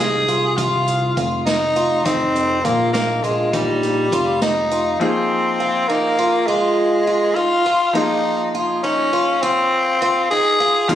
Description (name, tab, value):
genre	progressive instrumental, band music in an uneven meter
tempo	204 BPM (eighths)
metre	5/8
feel	straight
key	F minor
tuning	A4 = 440 Hz
part	raspy tenor saxophone	melody	0.0-10.9 s	G3 to Ab4	-17 LUFS	left 1 dB	ping-pong delay
part	picked twelve-string acoustic guitar	arpeggios	0.0-10.9 s	Eb4 to F4	-22 LUFS	right 1 dB	none
part	fat analog bass	bass	0.0-5.0, 10.9 s	F1 to C2	-24 LUFS	equal	none
part	swinging big-band drum kit	drums	0.3-4.9, 10.9 s	hi-hat, kick drum, snare drum	-26 LUFS	right 1 dB	none
part	bright grand piano	accompaniment	5.0-10.9 s	F3 to Ab4	-26 LUFS	left 3 dB	none
room	light reverb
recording	recorded on a phone in the room, studio reverb, compression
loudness	-16 LUFS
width	side -11 dB against mid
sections	0.0-5.0 A section; 5.0-10.9 B section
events	none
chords	0.0 Fm7; 2.1 Eb/F; 5.0 Fm